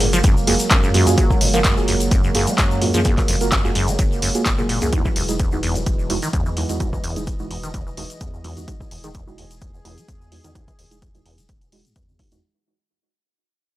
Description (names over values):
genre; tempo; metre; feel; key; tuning
acid house; 128 BPM; 4/4; swing 54% on 16ths; unclear; A4 = 441 Hz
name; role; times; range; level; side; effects
warm analog pad; sustained chords; 0.0-12.4 s; E3 to D#5; -27 LUFS; right 2 dB; chorus, sidechain pumping
acid bass, saw; riff; 0.0-12.4 s; E1 to A#3; -25 LUFS; equal; lush chorus, sidechain pumping, tape echo
deep mellow chord stab; stabs; 0.0-12.4 s; G#3 to A#4; -25 LUFS; right 2 dB; chorus, tape echo
saturated sub bass; bass; 0.0-12.4 s; E1 to F#2; -25 LUFS; equal; tube saturation, sidechain pumping
punchy analog drum machine; drums; 0.0-12.4 s; handclaps, hi-hat; -23 LUFS; equal; small room reverb
soft-mallet drum kit; drums; 0.0-4.8 s; hi-hat, shaker, snare drum; -34 LUFS; equal; none
tube shaker; percussion; 0.1-12.4 s; none; -32 LUFS; left 4 dB; none
electronic kick drum; drums; 0.2-12.3 s; none; -20 LUFS; equal; small room reverb
room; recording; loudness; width
light reverb; dry, gritty hardware recording, transformer saturation; -16 LUFS; side -16 dB against mid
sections
0.0-12.4 A section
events
fade-out 0.0-12.4; filter sweep on acid bass 0.0-12.4; filter sweep on synth stab 0.0-12.4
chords
0.0 F#maj9; 4.9 Emaj9